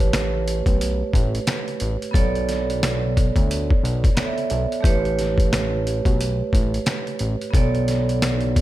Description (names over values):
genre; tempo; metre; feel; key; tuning
hip hop, boom-bap hip-hop; 89 BPM; 4/4; swing 60% on 16ths; unclear; A4 = 439 Hz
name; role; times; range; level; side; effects
vibraphone with medium hard mallets; accompaniment; 0.0-8.6 s; A3 to E5; -24 LUFS; right 4 dB; cassette tape, high-pass filter, low-pass filter
fat analog bass; bass; 0.0-8.6 s; A1 to D2; -24 LUFS; equal; none
trip hop sampler-style drum kit; drums; 0.0-8.6 s; hi-hat, kick drum, snare drum; -21 LUFS; equal; none
room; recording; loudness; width
little or no reverb; none; -19 LUFS; side -15 dB against mid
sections
0.0-8.6 A section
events
none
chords
0.0 A9; 2.1 Bm9; 4.8 A9; 7.5 Bm9